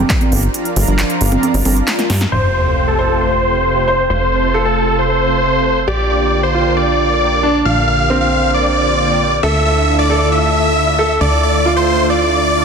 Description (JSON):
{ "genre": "uplifting trance", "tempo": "135 BPM", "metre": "4/4", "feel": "straight", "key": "F major", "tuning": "A4 = 438 Hz", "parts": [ { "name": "plucky analog bass", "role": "bass", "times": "0.0-12.6 s", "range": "F1 to G2", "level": "-19 LUFS", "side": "equal", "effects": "sidechain pumping" }, { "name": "big-room dance drum kit", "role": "drums", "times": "0.1-2.4 s", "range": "congas, crash cymbal, handclaps, hi-hat, snare drum", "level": "-19 LUFS", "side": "right 2 dB", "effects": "overdrive, low-pass filter on hats, low-pass filter on perc, low-pass filter on snare, low-pass filter on cymbals, low-pass filter on room" }, { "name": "big supersaw lead", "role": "melody", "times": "2.3-12.6 s", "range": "A4 to F5", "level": "-15 LUFS", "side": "equal", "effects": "sidechain pumping, low-pass filter, tape echo" }, { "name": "warm baby grand piano", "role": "second line", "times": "2.3-12.6 s", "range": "C4 to C5", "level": "-19 LUFS", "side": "right 2 dB", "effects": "dub echo" }, { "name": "sub drop", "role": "sound effects", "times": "2.3-4.1 s", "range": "none", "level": "-20 LUFS", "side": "equal", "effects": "none" } ], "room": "light reverb", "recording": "dense, heavily limited modern master", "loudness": "-12 LUFS", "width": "side -6 dB against mid", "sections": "0.0-2.3 A section; 2.3-12.6 B section", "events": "drum fill 1.9-2.3; band accent 2.2; impact 2.3-4.1; filter sweep on supersaw synth 2.3-12.6", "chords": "0.0 Gm7; 2.3 Fadd9; 5.9 Bb6; 9.4 Dmadd9", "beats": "0.10 | 0.54 0.99 1.43 1.88 | 2.32 2.77 3.21 3.65 | 4.10 4.54 4.99 5.43 | 5.88 6.32 6.76 7.21 | 7.65 8.10 8.54 8.99 | 9.43 9.88 10.32 10.77 | 11.21 11.65 12.10 12.54" }